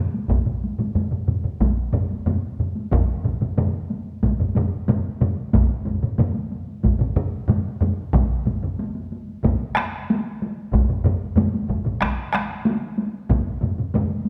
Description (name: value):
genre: japanese traditional, taiko drum ensemble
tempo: 92 BPM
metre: 4/4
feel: straight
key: none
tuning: none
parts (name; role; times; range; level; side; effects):
- taiko ensemble; percussion; 0.1-14.3 s; none; -28 LUFS; equal; none
- taiko ensemble; percussion; 0.3-14.1 s; none; -28 LUFS; equal; none
- taiko ensemble; percussion; 0.3-14.1 s; none; -28 LUFS; equal; none
- taiko ensemble; percussion; 0.3-13.5 s; none; -26 LUFS; equal; none
room: wet scoring stage reverb, RT60 1.7 s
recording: dark, warm production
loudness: -23 LUFS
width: mono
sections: 0.0-2.9 A section; 2.9-14.3 B section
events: speeding up 0.0-14.3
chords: none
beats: | 0.30 0.96 1.61 2.27 | 2.93 3.58 4.24 4.89 | 5.54 6.20 6.85 7.50 | 8.14 8.79 9.44 10.09 | 10.73 11.38 12.02 12.66 | 13.30 13.95